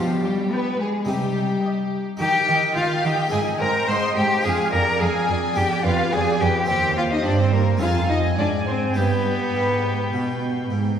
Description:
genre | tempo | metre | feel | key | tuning
classical, baroque-style concerto movement with solo episodes | 107 BPM | 4/4 | straight | unclear | A4 = 441 Hz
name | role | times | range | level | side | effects
rich cello | melody | 0.0-10.7 s | F3 to C5 | -23 LUFS | left 1 dB | none
warm symphonic violin section | melody | 0.0-10.7 s | F4 to C6 | -31 LUFS | left 4 dB | none
rich studio violin section | second line | 0.0-10.7 s | G4 to C6 | -28 LUFS | left 1 dB | none
harpsichord | accompaniment | 0.0-11.0 s | Eb2 to Ab4 | -28 LUFS | equal | none
warm chamber cello section | bass | 0.0-11.0 s | Eb2 to Eb3 | -24 LUFS | right 2 dB | none
rich chamber viola section | accompaniment | 0.5-11.0 s | B4 to Ab5 | -30 LUFS | right 1 dB | none
room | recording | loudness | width
wet concert hall reverb, RT60 1.8 s | heard from further back in the room | -19 LUFS | side -8 dB against mid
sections
0.0-11.0 A section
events
none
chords
0.0 G/B; 1.1 Cm; 2.2 Eb; 3.3 Ab; 4.4 Ddim/F; 5.6 G7/F; 6.7 Cm/Eb; 7.8 Fm; 9.0 G

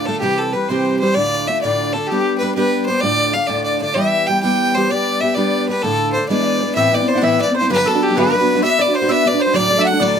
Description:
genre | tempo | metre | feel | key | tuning
celtic folk, Celtic jig | 129 BPM (dotted quarters) | 6/8 | straight | D dorian, A dorian from 6.8 s | A4 = 440 Hz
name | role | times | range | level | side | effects
clear fiddle | melody | 0.0-10.2 s | G4 to G5 | -18 LUFS | equal | none
bright wooden flute | second line | 0.0-10.2 s | G4 to G5 | -23 LUFS | left 8 dB | none
picked steel-string acoustic guitar | accompaniment | 0.0-10.2 s | D2 to B4 | -18 LUFS | right 1 dB | none
mandolin | second line | 6.8-10.2 s | A4 to F#5 | -23 LUFS | right 4 dB | none
room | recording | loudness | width
light reverb | close, detailed microphones | -14 LUFS | side -7 dB against mid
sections
0.0-6.8 A section; 6.8-10.2 B section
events
none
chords
0.2 C; 1.2 Dm; 2.1 G; 3.0 Dm; 4.0 Em; 4.9 G; 5.8 Dm; 6.3 E7; 6.8 Amadd9; 7.7 Gmaj7; 8.6 Bm; 9.5 D

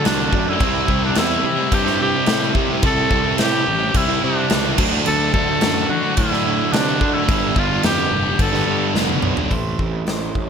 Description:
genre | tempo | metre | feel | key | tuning
quiet-loud alternative rock | 108 BPM | 4/4 | straight | unclear | A4 = 441 Hz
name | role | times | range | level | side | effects
warm cor anglais | melody | 0.0-8.9 s | D4 to A4 | -22 LUFS | equal | slapback echo
crunchy overdriven guitar | riff | 0.0-10.5 s | G2 to E4 | -24 LUFS | right 13 dB | none
scooped high-gain guitar | riff | 0.0-9.5 s | G2 to D4 | -24 LUFS | equal | distortion
thick fuzz guitar | riff | 0.0-9.5 s | G2 to E4 | -25 LUFS | left 14 dB | distortion
fuzz picked electric bass | bass | 0.1-10.5 s | F1 to D3 | -24 LUFS | equal | overdrive
big rock drum kit | drums | 0.1-10.5 s | crash cymbal, hi-hat, kick drum, snare drum, toms | -22 LUFS | equal | none
twelve-string electric guitar | arpeggios | 9.5-10.5 s | A2 to C5 | -29 LUFS | left 3 dB | slapback echo
room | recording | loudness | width
small room ambience | none | -16 LUFS | side -7 dB against mid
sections
0.0-9.5 A section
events
drum fill 9.0-9.5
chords
0.0 D; 0.6 C; 4.8 Dadd9; 7.3 Gadd9; 9.5 Am

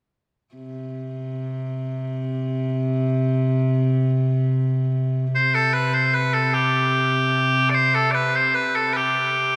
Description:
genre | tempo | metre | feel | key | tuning
medieval dance | 100 BPM (dotted quarters) | 6/8 | straight | unclear | A4 = 440 Hz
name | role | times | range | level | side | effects
warm viola da gamba | drone | 0.5-9.6 s | C3 | -24 LUFS | equal | none
loud bright bagpipes | melody | 5.4-9.6 s | G4 to D5 | -21 LUFS | equal | none
room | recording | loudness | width
wet cathedral reverb, RT60 4.9 s | recorded in a church or concert hall | -21 LUFS | mono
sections
0.5-5.3 A section; 5.3-9.6 B section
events
none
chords
none

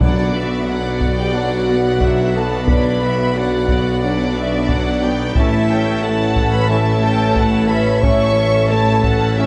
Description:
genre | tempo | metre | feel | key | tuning
cinematic, epic orchestral film score | 90 BPM | 4/4 | straight | B minor | A4 = 441 Hz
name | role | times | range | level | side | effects
warm studio violin section | melody | 0.0-9.5 s | C#5 to A5 | -30 LUFS | equal | none
rich symphonic violin section | second line | 0.0-9.5 s | D5 to C#6 | -27 LUFS | equal | none
rich symphonic viola section | accompaniment | 0.0-9.5 s | F#3 to A4 | -27 LUFS | equal | none
clear trombone section | sustained chords | 0.0-9.5 s | E3 to D4 | -30 LUFS | equal | none
mellow French horn section | sustained chords | 0.0-9.5 s | D4 to C#5 | -23 LUFS | equal | none
pipe organ, plenum | sustained chords | 0.0-9.5 s | F#3 to E5 | -29 LUFS | equal | none
rich symphonic cello section | bass | 0.0-9.5 s | A2 to B2 | -26 LUFS | equal | none
warm studio double bass section | bass | 0.0-9.5 s | A1 to B1 | -25 LUFS | equal | none
warm tuba | bass | 0.0-9.5 s | A1 to B1 | -25 LUFS | equal | none
solo taiko drums | drums | 0.0-9.5 s | none | -22 LUFS | equal | none
timpani | percussion | 0.0-1.0 s | B2 | -25 LUFS | equal | none
room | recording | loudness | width
moderate concert hall reverb, RT60 2.2 s | nothing above 10.6 kHz | -16 LUFS | mono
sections
0.0-9.5 A section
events
none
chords
0.0 Bm; 5.4 A

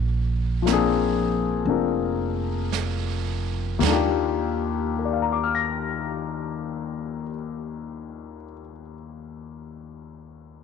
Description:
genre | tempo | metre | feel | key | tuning
jazz ballad | 53-63 BPM | 4/4 | swing 69% on 8ths | Eb major | A4 = 440 Hz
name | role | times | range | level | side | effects
upright bass | bass | 0.0-7.2 s | F1 to Eb2 | -28 LUFS | right 3 dB | none
warm grand piano | accompaniment | 0.6-10.6 s | Eb2 to Bb6 | -25 LUFS | left 9 dB | none
vintage brush drum kit | drums | 0.7-4.8 s | brushed snare drum, hi-hat, snare drum, splash cymbal, toms | -30 LUFS | right 13 dB | none
room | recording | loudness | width
light reverb, studio reverb | 1960s-style stereo with parts hard left and right | -22 LUFS | side -6 dB against mid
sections
0.0-3.8 A section; 3.8-8.4 B section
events
slowing down 0.0-3.8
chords
0.0 Bb7; 3.8 Ebmaj9

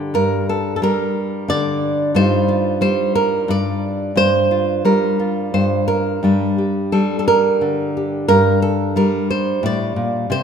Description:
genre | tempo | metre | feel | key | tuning
folk, solo fingerstyle acoustic guitar | 89 BPM | 3/4 | rubato | G minor | A4 = 440 Hz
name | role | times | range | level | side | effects
nylon-string guitar | solo | 0.0-10.4 s | G2 to D5 | -15 LUFS | equal | none
room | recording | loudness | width
moderate concert hall reverb, RT60 2.1 s | minimal, uncompressed stereo recording | -15 LUFS | side -7 dB against mid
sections
0.0-10.4 A section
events
none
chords
0.0 Gm; 2.1 Ebadd9/G; 6.2 Gm

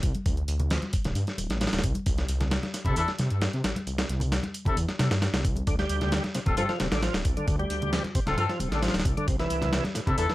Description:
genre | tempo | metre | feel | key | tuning
breakbeat, breaks | 133 BPM | 4/4 | straight | D minor | A4 = 440 Hz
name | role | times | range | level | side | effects
detuned saw bass | bass | 0.0-10.3 s | D1 to C3 | -29 LUFS | equal | none
dusty soul sampler-style drum kit | drums | 0.0-10.3 s | hi-hat, kick drum, snare drum | -28 LUFS | equal | small room ambience
electronic hi-hat | drums | 0.0-10.3 s | none | -43 LUFS | left 1 dB | small room ambience
congas | percussion | 0.1-10.2 s | none | -36 LUFS | left 1 dB | none
warm horn section | stabs | 2.9-10.3 s | C4 to A4 | -30 LUFS | left 4 dB | vintage 12-bit sampler grit, digital delay
bright tonewheel organ | riff | 5.7-10.3 s | A2 to G3 | -30 LUFS | equal | overdrive, chorus vibrato, slow rotary speaker, digital delay
room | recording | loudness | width
little or no reverb | vinyl crackle | -24 LUFS | side -17 dB against mid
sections
0.0-10.3 A section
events
none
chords
0.0 D5; 2.1 C; 5.7 Dm7; 9.3 C6

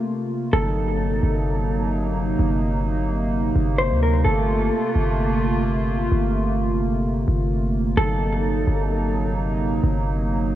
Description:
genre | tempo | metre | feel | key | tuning
hip hop, atmospheric cloud-rap | 129 BPM | 4/4 | half-time | unclear | A4 = 438 Hz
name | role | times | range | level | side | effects
hollow soft pad | sustained chords | 0.0-10.6 s | C3 to F4 | -23 LUFS | right 1 dB | chorus
mellow electric guitar | melody | 0.5-9.3 s | A4 to C5 | -26 LUFS | equal | tape echo
warm 808-style bass | bass | 0.5-10.6 s | G1 to D2 | -22 LUFS | equal | none
room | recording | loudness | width
digital ambience | worn, warbling old tape, cassette tape, warbly pitch drift | -19 LUFS | side -12 dB against mid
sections
0.5-10.6 A section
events
break 0.0-0.5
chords
0.0 Gm11 (rootless); 0.5 D7b9b13/G (rootless); 4.3 Gm11; 8.0 D7b9b13/G (rootless)

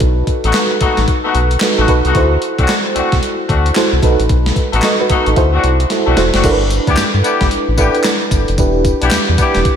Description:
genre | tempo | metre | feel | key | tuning
R&B, new jack swing | 112 BPM | 4/4 | swing 62% on 16ths | unclear | A4 = 439 Hz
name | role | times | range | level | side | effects
FM electric piano with tremolo | accompaniment | 0.0-9.8 s | D4 to D#5 | -16 LUFS | right 2 dB | phaser
round analog bass | bass | 0.0-9.7 s | E1 to G2 | -15 LUFS | equal | none
gated 80s digital drum machine | drums | 0.0-9.8 s | crash cymbal, handclaps, hi-hat, kick drum, snare drum, tambourine | -16 LUFS | equal | gated reverb, gated reverb snare
mellow horn section | stabs | 0.4-9.6 s | A3 to G4 | -18 LUFS | left 4 dB | ping-pong delay
room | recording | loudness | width
moderate lush hall reverb, RT60 2.0 s, digital ambience | dreamy mix soaked in reverb | -11 LUFS | side -8 dB against mid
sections
0.0-6.4 A section; 6.4-9.8 B section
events
drum fill 5.9-6.4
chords
0.0 B7; 2.2 D7; 4.0 B7; 5.4 D7; 6.4 G6; 8.6 Em7

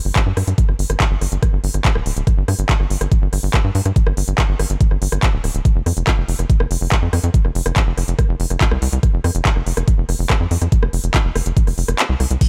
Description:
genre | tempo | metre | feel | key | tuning
psychedelic trance | 142 BPM | 4/4 | straight | unclear | A4 = 439 Hz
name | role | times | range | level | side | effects
tight sequencer bass | bass | 0.1-12.4 s | D1 to G2 | -21 LUFS | equal | none
techno drum kit | drums | 0.1-12.5 s | crash cymbal, handclaps, hi-hat, rim click | -25 LUFS | equal | overdrive
electronic kick drum | drums | 0.2-12.5 s | none | -18 LUFS | equal | none
room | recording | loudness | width
little or no reverb | none | -18 LUFS | mono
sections
0.0-12.5 A section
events
kick drops out 12.0-12.4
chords
none

